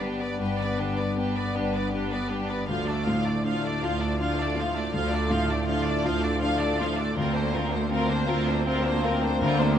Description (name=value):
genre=cinematic, emotional film score for orchestra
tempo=53 BPM (dotted quarters)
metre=6/8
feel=rubato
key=D minor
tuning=A4 = 440 Hz
part: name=clear symphonic violin section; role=melody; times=0.0-9.8 s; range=Bb4 to F5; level=-32 LUFS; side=left 1 dB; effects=none
part: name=rich studio violin section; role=second line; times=0.0-9.8 s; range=D4 to B4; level=-34 LUFS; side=left 2 dB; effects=none
part: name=felt-muted upright piano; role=accompaniment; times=0.0-9.8 s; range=D2 to F4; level=-30 LUFS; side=left 2 dB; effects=none
part: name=rich symphonic viola section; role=accompaniment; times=0.0-9.8 s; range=F3 to D4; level=-35 LUFS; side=right 2 dB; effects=none
part: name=mellow French horn section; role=sustained chords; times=0.0-9.8 s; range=A3 to F4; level=-33 LUFS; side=left 4 dB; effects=none
part: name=concert harp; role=arpeggios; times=0.0-9.8 s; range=G2 to Bb5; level=-35 LUFS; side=left 9 dB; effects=none
part: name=rich symphonic cello section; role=bass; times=0.0-9.8 s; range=D2 to G2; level=-31 LUFS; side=right 4 dB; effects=none
part: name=rich symphonic double bass section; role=bass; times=0.0-9.8 s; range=G1 to D2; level=-33 LUFS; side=right 3 dB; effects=none
room=light reverb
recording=close, detailed microphones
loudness=-24 LUFS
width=side -9 dB against mid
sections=0.0-9.8 A section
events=none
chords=0.0 G; 2.7 Dm; 7.2 Bbadd9/D